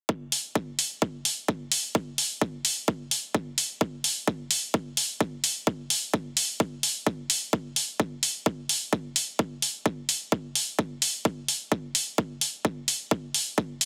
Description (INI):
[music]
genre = EDM, festival progressive house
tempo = 129 BPM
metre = 4/4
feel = straight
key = none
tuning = none
[part]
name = electronic kick drum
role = drums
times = 0.1-13.7 s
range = none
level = -30 LUFS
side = equal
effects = overdrive, high-pass filter on kick
[part]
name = electronic hi-hat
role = drums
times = 0.3-13.9 s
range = none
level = -26 LUFS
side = equal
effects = overdrive
[sound]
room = little or no reverb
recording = dense, heavily limited modern master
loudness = -28 LUFS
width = mono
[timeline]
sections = 0.1-13.9 A section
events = none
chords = none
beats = | 0.09 0.55 1.02 1.49 | 1.95 2.42 2.88 3.35 | 3.81 4.28 4.74 5.21 | 5.67 6.14 6.60 7.07 | 7.53 8.00 8.46 8.93 | 9.39 9.86 10.32 10.79 | 11.25 11.72 12.18 12.65 | 13.11 13.58